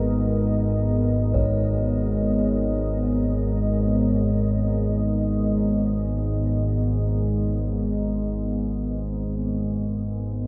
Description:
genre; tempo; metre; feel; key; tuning
dark ambient drone; free time; none; none; G# minor; A4 = 440 Hz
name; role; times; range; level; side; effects
deep dark ambient pad; sustained chords; 0.0-10.5 s; G#3 to D#5; -28 LUFS; equal; chorus, built-in reverb
analog drone; drone; 0.0-10.5 s; G#1 to G#2; -26 LUFS; equal; chorus
bronze singing bowl; texture; 0.0-10.5 s; B3 to C#5; -39 LUFS; equal; none
taiko ensemble; percussion; 1.3-1.6 s; none; -33 LUFS; equal; none
room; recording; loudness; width
wet huge ambient reverb, RT60 7.8 s; tape saturation; -24 LUFS; mono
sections
0.0-10.5 A section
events
none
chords
0.0 G#madd9

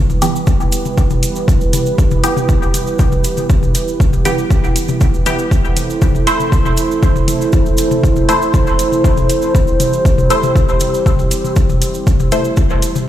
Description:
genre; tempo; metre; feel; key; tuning
dub techno; 119 BPM; 4/4; straight; unclear; A4 = 441 Hz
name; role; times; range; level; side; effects
dark analog pad; sustained chords; 0.0-13.1 s; E4 to C5; -18 LUFS; right 2 dB; chorus, sidechain pumping
cabasa; percussion; 0.1-13.1 s; none; -28 LUFS; right 4 dB; none
electronic toms; percussion; 0.1-13.1 s; none; -22 LUFS; left 3 dB; sidechain pumping on toms, small room ambience, dub echo
filtered dub chord stab; stabs; 0.2-12.6 s; E3 to C5; -20 LUFS; equal; chorus, phaser, sidechain pumping, dub echo
electronic hi-hat; drums; 0.2-12.9 s; none; -23 LUFS; left 2 dB; overdrive, small room ambience
electronic kick drum; drums; 0.5-12.7 s; none; -14 LUFS; equal; overdrive, small room ambience
room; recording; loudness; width
light reverb, digital ambience; played on a big sound system in a bare room, large studio reverb; -12 LUFS; side -12 dB against mid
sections
0.0-13.1 A section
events
none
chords
0.0 Em; 5.5 Am

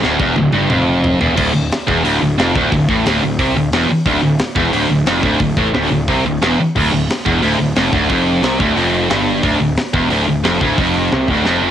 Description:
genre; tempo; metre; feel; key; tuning
heavy metal; 178 BPM; 4/4; straight; D minor; A4 = 441 Hz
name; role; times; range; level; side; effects
high-gain distorted guitar; riff; 0.0-11.7 s; D2 to C3; -14 LUFS; equal; distortion, cassette tape
fuzz picked electric bass; bass; 0.0-11.7 s; D1 to C2; -21 LUFS; equal; overdrive
tight metal drum kit; drums; 0.0-11.5 s; crash cymbal, hi-hat, kick drum, snare drum, toms; -20 LUFS; equal; none
room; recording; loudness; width
small room ambience; home recording on cassette; -12 LUFS; side -10 dB against mid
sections
0.0-1.4 A section; 1.4-11.7 B section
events
drum fill 0.0-1.4, 11.5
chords
0.0 Dm

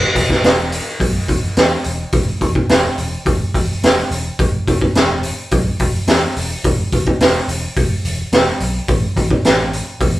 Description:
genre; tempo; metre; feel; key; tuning
blues rock power trio and southern rock; 106 BPM; 4/4; straight; unclear; A4 = 439 Hz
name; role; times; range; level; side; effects
vintage muted picked electric bass; bass; 0.0-10.2 s; E1 to E2; -22 LUFS; equal; none
raw garage drum kit; drums; 0.2-10.1 s; hi-hat, kick drum, snare drum; -14 LUFS; equal; none
room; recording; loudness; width
light reverb; band playing live in one room; -14 LUFS; side -16 dB against mid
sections
0.0-10.2 A section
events
none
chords
none

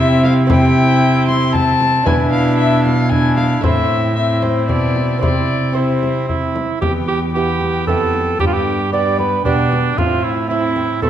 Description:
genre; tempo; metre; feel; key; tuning
classical, renaissance-style consort dance; 114 BPM; 3/4; straight; unclear; A4 = 440 Hz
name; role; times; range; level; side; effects
dark violin; melody; 0.0-11.1 s; C5 to C6; -21 LUFS; left 5 dB; none
mellow cor anglais; second line; 0.0-11.1 s; D4 to D5; -20 LUFS; right 4 dB; none
lute; accompaniment; 0.0-11.1 s; E2 to C5; -25 LUFS; right 4 dB; none
warm viola; accompaniment; 0.0-11.1 s; B3 to D4; -22 LUFS; left 2 dB; none
rich cello; bass; 0.0-11.1 s; E2 to C3; -18 LUFS; equal; none
frame drum; percussion; 0.2-11.1 s; none; -23 LUFS; left 2 dB; none
room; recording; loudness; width
moderate recital hall reverb, RT60 1.6 s; dark, warm production; -13 LUFS; side -10 dB against mid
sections
0.0-6.8 A section; 6.8-11.1 B section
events
none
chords
0.0 C; 2.1 E5/B; 3.6 Am; 5.2 C; 6.8 Em; 8.4 G; 10.0 Am

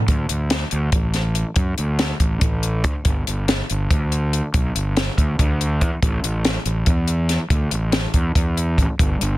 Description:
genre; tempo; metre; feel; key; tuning
math rock and midwest emo; 283 BPM (eighths); 7/8; straight; D major; A4 = 441 Hz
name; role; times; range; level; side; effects
fuzz fingered electric bass; bass; 0.1-9.4 s; G1 to F#2; -21 LUFS; equal; overdrive
compact cocktail drum kit; drums; 0.1-9.3 s; hi-hat, kick drum, snare drum; -20 LUFS; equal; none
room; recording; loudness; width
little or no reverb; dense, heavily limited modern master; -18 LUFS; side -17 dB against mid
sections
0.1-9.4 A section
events
none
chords
none

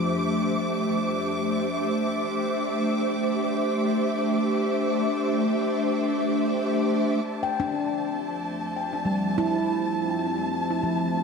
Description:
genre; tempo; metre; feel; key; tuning
ambient; free time; none; none; F major; A4 = 437 Hz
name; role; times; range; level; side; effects
ethereal airy pad; sustained chords; 0.0-11.2 s; F2 to E5; -25 LUFS; equal; ensemble chorus, built-in reverb, shimmer reverb
handpan; arpeggios; 0.0-11.2 s; F3 to G5; -28 LUFS; equal; tape echo
rich chamber violin section; texture; 0.0-11.2 s; A5 to D6; -32 LUFS; right 1 dB; shimmer reverb
bowed-like drone; drone; 7.9-11.2 s; F3 to C4; -32 LUFS; left 1 dB; built-in reverb
room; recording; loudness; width
wet lush hall reverb, RT60 2.6 s; none; -23 LUFS; side -5 dB against mid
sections
0.0-7.2 A section; 7.2-11.2 B section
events
none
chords
0.0 F6

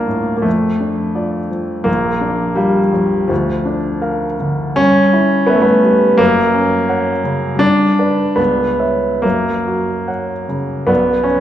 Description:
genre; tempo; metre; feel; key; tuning
classical, romantic character piece for solo piano; 68-87 BPM; 2/4; rubato; unclear; A4 = 441 Hz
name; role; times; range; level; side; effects
clear baby grand piano; solo; 0.0-11.4 s; Bb1 to F#5; -13 LUFS; equal; none
room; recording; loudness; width
wet recital hall reverb, RT60 1.8 s; dark, warm production, nothing above 10.8 kHz; -13 LUFS; side -11 dB against mid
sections
0.0-10.9 A section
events
none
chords
0.5 Dm/F; 1.9 Bb; 3.3 Bb/D; 4.8 Em/G; 6.2 F#; 7.6 G; 8.4 C#m7; 9.2 F#; 10.9 Bm

